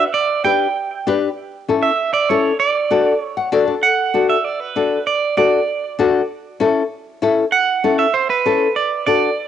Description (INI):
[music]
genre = latin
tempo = 195 BPM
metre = 4/4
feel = straight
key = D major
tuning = A4 = 441 Hz
[part]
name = clean electric guitar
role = melody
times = 0.0-9.5 s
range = B4 to G5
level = -17 LUFS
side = right 6 dB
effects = spring reverb, cassette tape
[part]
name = nylon-string guitar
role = accompaniment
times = 0.0-9.3 s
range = C#4 to F#5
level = -17 LUFS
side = left 5 dB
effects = cassette tape
[sound]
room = moderate small room ambience, RT60 0.5 s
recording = home recording on cassette, nothing above 10.9 kHz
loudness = -15 LUFS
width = side -9 dB against mid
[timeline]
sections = 0.0-3.8 A section; 3.8-9.5 B section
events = nylon-string guitar fill 3.2-3.8; clean electric guitar solo 3.8-9.5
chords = 0.1 G; 1.4 A; 2.6 D; 6.3 A; 8.8 D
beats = | 0.14 0.45 0.76 1.06 | 1.37 1.68 1.99 2.29 | 2.60 2.91 3.22 3.52 | 3.83 4.14 4.45 4.76 | 5.07 5.37 5.68 5.99 | 6.30 6.60 6.91 7.22 | 7.53 7.84 8.14 8.45 | 8.76 9.07 9.38